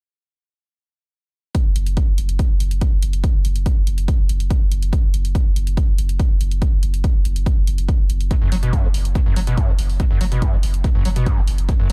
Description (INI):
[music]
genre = driving peak-time techno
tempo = 142 BPM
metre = 4/4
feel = straight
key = unclear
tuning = A4 = 440 Hz
[part]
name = electronic hi-hat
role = drums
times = 1.5-11.9 s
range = none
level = -36 LUFS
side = equal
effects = sidechain pumping on hats
[part]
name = electronic kick drum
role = drums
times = 1.5-11.8 s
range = none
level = -20 LUFS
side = equal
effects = none
[part]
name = saturated sub bass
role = bass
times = 1.7-11.9 s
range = F#1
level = -23 LUFS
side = equal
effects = overdrive, sidechain pumping, low-pass filter
[part]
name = overdriven acid bass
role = riff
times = 8.3-11.9 s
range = E2 to F#3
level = -26 LUFS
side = equal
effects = distortion, lush chorus, sidechain pumping, delay
[sound]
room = little or no reverb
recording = none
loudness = -19 LUFS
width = mono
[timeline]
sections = 1.5-11.9 A section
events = none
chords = none